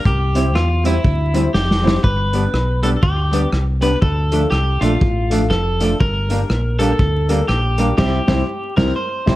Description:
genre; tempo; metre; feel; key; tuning
ska; 121 BPM; 4/4; swing 60% on 8ths; unclear; A4 = 440 Hz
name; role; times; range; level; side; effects
electric guitar at the edge of break-up; melody; 0.0-9.4 s; E4 to C5; -22 LUFS; equal; slapback echo
fingered electric bass; bass; 0.1-9.4 s; F1 to E2; -18 LUFS; equal; none
vintage drum kit; drums; 0.1-9.4 s; crash cymbal, hi-hat, kick drum, rim click, snare drum; -20 LUFS; equal; none
hollow-body jazz guitar; accompaniment; 0.3-9.4 s; F3 to E4; -23 LUFS; right 2 dB; none
dark upright piano; stabs; 0.3-9.4 s; A3 to C5; -24 LUFS; left 3 dB; none
room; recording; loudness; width
light reverb, small room ambience; dark, warm production, vinyl crackle; -15 LUFS; side -16 dB against mid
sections
0.0-9.4 A section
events
drum fill 1.5-2.0; band accent 8.0-9.4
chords
0.1 C; 2.0 G; 4.0 Dm; 6.0 Gm; 8.0 C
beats
| 0.05 0.55 1.05 1.54 | 2.04 2.54 3.03 3.53 | 4.02 4.52 5.01 5.51 | 6.01 6.50 7.00 7.49 | 7.99 8.48 8.98

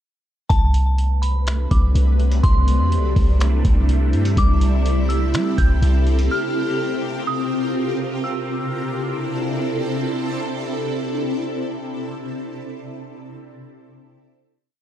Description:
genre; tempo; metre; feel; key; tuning
hip hop, atmospheric cloud-rap; 124 BPM; 4/4; half-time; C major; A4 = 442 Hz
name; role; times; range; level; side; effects
glassy synth bell; melody; 0.5-9.7 s; A5 to G6; -29 LUFS; right 2 dB; chorus, phaser, low-pass filter, ping-pong delay
shimmering ambient pad; sustained chords; 1.2-11.4 s; C3 to B4; -23 LUFS; equal; chorus, built-in reverb, phaser, sidechain pumping
warm 808-style bass; bass; 0.5-6.3 s; C2 to G3; -17 LUFS; equal; none
trip hop sampler-style drum kit; drums; 0.5-6.3 s; finger snaps, hi-hat, kick drum; -19 LUFS; equal; none
room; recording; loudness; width
light reverb; dark, warm production; -17 LUFS; side -11 dB against mid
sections
0.5-8.2 verse; 8.2-12.1 final chord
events
none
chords
0.5 Bm7/C; 2.4 C6; 4.4 D9sus4/C; 6.3 Eb69/C; 8.2 C6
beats
| 0.50 0.98 1.47 1.95 | 2.44 2.92 3.40 3.89 | 4.37 4.86 5.34 5.82 | 6.31 6.79 7.27 7.76 | 8.24 8.73 9.21 9.69 | 10.18 10.66 11.14

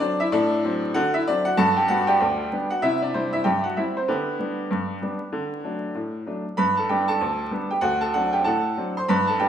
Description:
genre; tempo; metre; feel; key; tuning
ragtime piano; 96 BPM; 2/4; swing 59% on 16ths; G major; A4 = 439 Hz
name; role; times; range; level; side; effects
bright upright piano; solo; 0.0-9.5 s; D2 to C6; -21 LUFS; equal; none
room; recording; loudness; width
wet stone room reverb, RT60 1.3 s; band playing live in one room, vinyl crackle; -21 LUFS; side -9 dB against mid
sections
0.0-9.5 A section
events
none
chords
0.0 D7/A; 1.6 G; 2.8 C; 4.1 G/D; 5.3 D; 6.6 G; 7.8 D7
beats
| 0.33 0.95 | 1.58 2.20 | 2.82 3.45 | 4.07 4.70 | 5.32 5.95 | 6.58 7.20 | 7.83 8.45 | 9.08

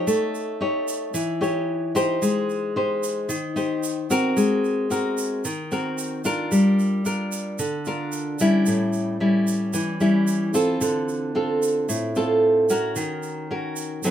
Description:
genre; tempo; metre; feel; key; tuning
bossa nova; 112 BPM; 4/4; straight; unclear; A4 = 440 Hz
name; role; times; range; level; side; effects
nylon-string guitar; accompaniment; 0.0-14.1 s; A2 to Db5; -21 LUFS; equal; none
egg shaker; percussion; 0.1-14.1 s; none; -33 LUFS; right 5 dB; none
room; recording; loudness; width
moderate studio ambience, RT60 0.5 s; band playing live in one room; -21 LUFS; side -10 dB against mid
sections
0.0-14.1 A section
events
none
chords
0.1 A7#11; 2.2 Abmaj7; 4.4 Ab9; 6.5 Gm7; 8.7 A7; 10.8 Dm7; 13.0 Ebm7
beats
| 0.07 0.61 1.15 1.68 | 2.22 2.76 3.29 3.83 | 4.37 4.91 5.44 5.98 | 6.52 7.05 7.59 8.13 | 8.67 9.20 9.74 10.28 | 10.82 11.35 11.89 12.43 | 12.97 13.51 14.04

